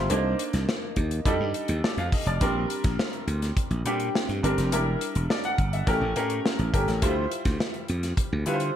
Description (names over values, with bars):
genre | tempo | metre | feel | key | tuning
polished 1980s jazz-funk pop | 104 BPM | 4/4 | straight | unclear | A4 = 441 Hz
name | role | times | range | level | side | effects
clear baby grand piano | accompaniment | 0.0-8.8 s | G3 to Gb5 | -28 LUFS | equal | lush chorus
slap bass | bass | 0.0-8.7 s | E1 to D3 | -27 LUFS | equal | none
modern studio drum kit | drums | 0.1-8.7 s | hi-hat, kick drum, snare drum | -28 LUFS | equal | gated reverb
room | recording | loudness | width
light reverb, small room ambience | bright 1980s-style digital production | -24 LUFS | side -10 dB against mid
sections
0.0-8.8 A section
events
none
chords
0.1 Cm9; 1.3 F13; 2.4 Bb69; 4.7 Em7b5; 5.9 A7b9; 7.0 Dm11